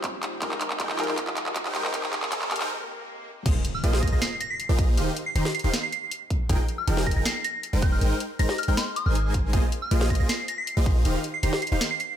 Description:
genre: future bass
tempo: 158 BPM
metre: 4/4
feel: half-time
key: unclear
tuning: A4 = 440 Hz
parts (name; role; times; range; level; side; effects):
- glassy digital keys; accompaniment; 0.0-3.5 s; G3 to C5; -37 LUFS; left 3 dB; chorus, sidechain pumping, dub echo
- ethereal airy pad; sustained chords; 0.0-2.7 s; Eb3 to Bb4; -45 LUFS; left 1 dB; none
- electronic kick drum; drums; 0.0-10.9 s; none; -26 LUFS; equal; none
- trap drum kit; drums; 0.0-12.1 s; crash cymbal, handclaps, hi-hat, snare drum; -29 LUFS; equal; none
- riser, swell and impact; sound effects; 0.1-5.0 s; none; -37 LUFS; right 1 dB; none
- supersaw chords; riff; 0.4-11.8 s; Eb3 to Bb5; -30 LUFS; equal; sidechain pumping
- warm 808-style bass; bass; 0.4-11.8 s; Eb1 to Bb1; -24 LUFS; equal; sidechain pumping, high-pass filter
- soft synth bell; melody; 3.7-12.1 s; C6 to C7; -31 LUFS; right 1 dB; chorus, phaser, sidechain pumping, dub echo
room: light reverb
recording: high-pass filter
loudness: -23 LUFS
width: side -10 dB against mid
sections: 0.0-3.5 A section; 3.5-12.2 B section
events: build-up 0.0-3.5; drum fill 0.0-2.7; filter sweep on supersaw synth 0.0-3.5; riser 0.1-2.7; break 2.7-3.5; swell 2.7-3.5; drop 3.5-12.2; impact 3.5-5.0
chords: 0.4 Fm11; 3.5 Bb9sus4; 5.0 Eb69; 6.5 Fm11; 9.5 Bb9sus4; 11.1 Eb69

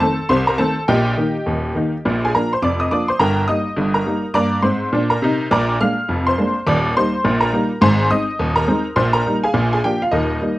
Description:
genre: ragtime piano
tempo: 104 BPM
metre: 2/4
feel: swing 60% on 16ths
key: Eb major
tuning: A4 = 440 Hz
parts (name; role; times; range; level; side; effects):
- honky-tonk upright piano; solo; 0.0-10.6 s; Eb1 to F6; -15 LUFS; equal; none
room: little or no reverb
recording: close, detailed microphones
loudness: -15 LUFS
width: side -17 dB against mid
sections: 0.0-10.6 A section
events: none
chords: 0.0 F7 (rootless); 0.9 Eb/Bb; 2.0 Bb; 3.2 Eb/G; 5.5 Bb7; 6.7 Eb; 7.8 Ab; 9.0 Eb/Bb; 9.5 Bb7

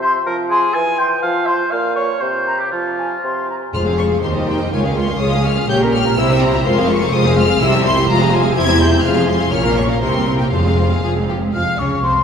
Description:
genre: quick classical-period movement for symphony orchestra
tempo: 123 BPM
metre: 2/4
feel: rubato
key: F minor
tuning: A4 = 440 Hz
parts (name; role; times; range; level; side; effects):
- clear oboe; second line; 0.0-3.5 s; F4 to Ab5; -20 LUFS; equal; none
- concert flute; second line; 0.0-3.6, 11.5-12.2 s; Ab5 to F6; -20 LUFS; left 2 dB; none
- mellow bassoon; accompaniment; 0.0-3.7 s; Bb2 to F3; -23 LUFS; right 2 dB; none
- rich studio violin section; melody; 3.7-12.1 s; C5 to Ab6; -22 LUFS; left 2 dB; none
- rich studio violin section; second line; 3.7-12.2 s; Eb4 to F5; -22 LUFS; left 3 dB; none
- rich studio viola section; accompaniment; 3.7-12.1 s; Eb3 to Bb4; -21 LUFS; right 2 dB; none
- mellow French horn section; sustained chords; 3.7-12.2 s; C4 to C5; -21 LUFS; left 2 dB; none
- clear studio cello section; bass; 3.7-12.2 s; C2 to F3; -20 LUFS; right 1 dB; none
- warm studio double bass section; bass; 3.7-12.2 s; E1 to F2; -21 LUFS; right 1 dB; none
- timpani; percussion; 3.7-4.2, 7.6-8.1, 10.5-11.3 s; F2 to C3; -26 LUFS; equal; none
room: wet church reverb, RT60 3.9 s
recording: recorded in a church or concert hall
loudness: -14 LUFS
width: side -7 dB against mid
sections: 0.0-3.7 A section; 3.7-11.5 B section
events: none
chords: 0.3 Fm; 0.7 C/E; 1.2 F5; 1.7 Bbm; 2.2 C5; 2.7 F5; 3.7 Fm; 4.2 Cm/Eb; 4.7 Db; 5.7 Gdim/Bb; 6.2 C; 6.7 Fm; 7.6 C; 8.1 Fm; 8.6 C/E; 9.0 Fm; 9.5 Bbm; 10.0 C7; 10.5 Fm; 11.5 Db

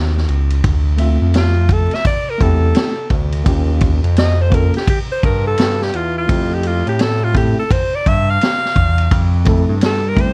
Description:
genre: hip hop, jazz-hop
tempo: 85 BPM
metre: 4/4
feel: swing 63% on 16ths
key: F major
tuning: A4 = 440 Hz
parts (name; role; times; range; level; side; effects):
- smooth synth bass; bass; 0.0-10.3 s; Db2 to A2; -18 LUFS; equal; none
- vintage drum kit; drums; 0.2-10.3 s; hi-hat, kick drum, ride cymbal, snare drum; -20 LUFS; equal; vintage 12-bit sampler grit
- tine electric piano; accompaniment; 1.0-10.3 s; A3 to E5; -24 LUFS; equal; overdrive
- clear alto saxophone; melody; 1.4-10.3 s; F4 to F5; -22 LUFS; equal; none
room: little or no reverb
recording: dark, warm production, vinyl crackle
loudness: -15 LUFS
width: mono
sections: 0.0-10.3 A section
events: alto saxophone solo 0.0-10.3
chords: 0.0 Eb7(no3); 0.6 Dm9; 3.5 Eb9; 6.3 Fmaj7

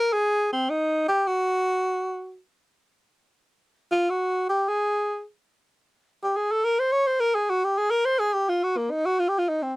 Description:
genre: jazz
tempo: 106 BPM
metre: 4/4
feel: swing 69% on 8ths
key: unclear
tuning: A4 = 440 Hz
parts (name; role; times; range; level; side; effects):
- clear tenor saxophone; solo; 0.0-9.7 s; Bb3 to Db5; -22 LUFS; equal; none
room: light reverb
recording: dark, warm production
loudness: -22 LUFS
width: side -22 dB against mid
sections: 0.0-4.6 A section; 4.6-9.8 A section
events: tenor saxophone solo 0.0-9.8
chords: none

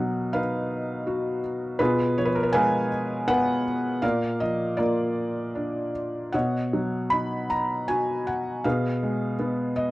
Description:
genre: classical, lyrical solo piano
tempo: 79 BPM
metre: 3/4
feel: uneven beats, rubato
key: unclear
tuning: A4 = 440 Hz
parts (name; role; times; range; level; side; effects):
- felt-muted upright piano; solo; 0.0-9.9 s; Bb2 to B5; -23 LUFS; equal; none
room: light reverb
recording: dark, warm production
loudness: -23 LUFS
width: side -18 dB against mid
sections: 0.0-9.9 A section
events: none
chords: 0.0 B; 1.8 Fdim/Cb; 4.0 Bb; 6.3 Badd9; 8.6 Abm/Cb

